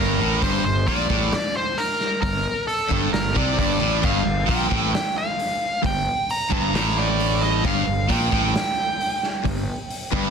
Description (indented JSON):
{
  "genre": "hard rock",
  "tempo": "133 BPM",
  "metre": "4/4",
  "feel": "straight",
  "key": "G minor",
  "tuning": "A4 = 439 Hz",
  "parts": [
    { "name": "nasal lead guitar with a parked wah", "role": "melody", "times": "0.0-10.3 s", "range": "A4 to Bb5", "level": "-24 LUFS", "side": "equal", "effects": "overdrive, slapback echo, plate reverb" },
    { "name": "distorted electric guitar", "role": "riff", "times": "0.0-10.3 s", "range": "G2 to C3", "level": "-25 LUFS", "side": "right 11 dB", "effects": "overdrive" },
    { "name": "overdriven semi-hollow guitar", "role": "riff", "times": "0.0-10.3 s", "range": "G2 to C3", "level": "-27 LUFS", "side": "left 10 dB", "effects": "none" },
    { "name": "fuzz fingered electric bass", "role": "bass", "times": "0.0-10.3 s", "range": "G1 to C2", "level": "-26 LUFS", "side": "equal", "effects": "overdrive" },
    { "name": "raw garage drum kit", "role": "drums", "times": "0.4-10.2 s", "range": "crash cymbal, hi-hat, kick drum, snare drum", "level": "-27 LUFS", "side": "equal", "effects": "none" },
    { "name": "sludgy distorted guitar", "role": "riff", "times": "4.0-10.3 s", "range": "G2 to Bb2", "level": "-29 LUFS", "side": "equal", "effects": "overdrive" }
  ],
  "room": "light reverb, small room ambience",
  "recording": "dense, heavily limited modern master",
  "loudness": "-19 LUFS",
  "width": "side -6 dB against mid",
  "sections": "0.0-10.3 A section",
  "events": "none",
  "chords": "0.0 Gm",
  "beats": "| 0.42 0.87 1.32 1.77 | 2.23 2.68 3.13 3.58 | 4.03 4.48 4.93 5.38 | 5.84 6.29 6.74 7.19 | 7.64 8.09 8.54 9.00 | 9.45 9.90"
}